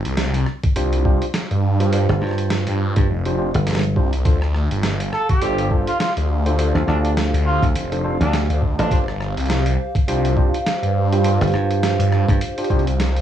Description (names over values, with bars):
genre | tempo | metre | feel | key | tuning
glitch hop | 103 BPM | 4/4 | swing 57% on 16ths | unclear | A4 = 442 Hz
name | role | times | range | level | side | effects
phased detuned saw bass | bass | 0.0-13.2 s | F1 to G2 | -19 LUFS | equal | phaser
boom bap sampler-style drum kit | drums | 0.1-13.2 s | hi-hat, rim click, snare drum | -27 LUFS | right 1 dB | studio reverb, cassette tape
electronic kick drum | drums | 0.6-12.8 s | none | -18 LUFS | equal | studio reverb, cassette tape
mellow tine electric piano | stabs | 0.8-12.8 s | D4 to C5 | -25 LUFS | equal | overdrive, sidechain pumping, cassette tape, tape echo
dry thumbed slap bass | bass | 2.1-12.4 s | G1 to G2 | -19 LUFS | right 1 dB | none
warbly tape-like pad | texture | 4.7-13.2 s | G4 to F5 | -28 LUFS | right 1 dB | chorus, built-in reverb, sidechain pumping, cassette tape
warm trumpet | melody | 5.1-9.0 s | D4 to A4 | -24 LUFS | right 1 dB | cassette tape, tape echo
room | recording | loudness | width
light reverb | home recording on cassette, studio ambience | -17 LUFS | side -10 dB against mid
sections
0.0-13.2 A section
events
none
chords
0.0 G7sus4; 4.3 Dm7; 8.9 G7sus4